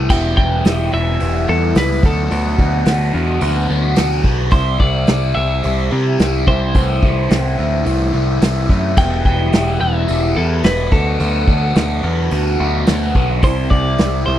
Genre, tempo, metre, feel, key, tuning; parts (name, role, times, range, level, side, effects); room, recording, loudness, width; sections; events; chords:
indie rock; 108 BPM; 4/4; straight; E minor; A4 = 441 Hz
biting overdriven guitar; riff; 0.0-14.4 s; C3 to F#4; -19 LUFS; left 1 dB; phaser
growling picked electric bass; bass; 0.0-14.4 s; E1 to C3; -18 LUFS; equal; overdrive
twelve-string electric guitar; melody; 0.1-14.4 s; A4 to G5; -23 LUFS; right 1 dB; slapback echo
unplugged drum kit; drums; 0.1-14.1 s; crash cymbal, hi-hat, kick drum, snare drum; -15 LUFS; equal
small room ambience; dry, close 1970s-style studio recording; -13 LUFS; side -12 dB against mid
0.1-14.4 A section
0.1 Em; 2.0 Bm7/D; 4.5 C; 6.7 Am/C; 9.0 Em; 10.9 Bm7/D; 13.4 C